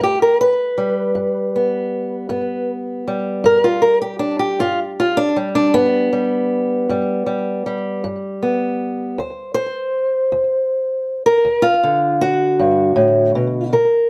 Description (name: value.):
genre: acoustic country blues, solo or duo.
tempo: 52 BPM (dotted quarters).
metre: 12/8.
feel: straight.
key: G major.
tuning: A4 = 440 Hz.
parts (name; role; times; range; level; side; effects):
fingerpicked old ladder-braced acoustic guitar; solo; 0.0-14.1 s; D2 to C5; -18 LUFS; equal; slapback echo.
room: light reverb.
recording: close, detailed microphones.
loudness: -18 LUFS.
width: mono.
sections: 0.0-14.1 A section.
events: steel-string acoustic guitar solo 0.0-14.1.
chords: 0.0 G; 9.2 D7.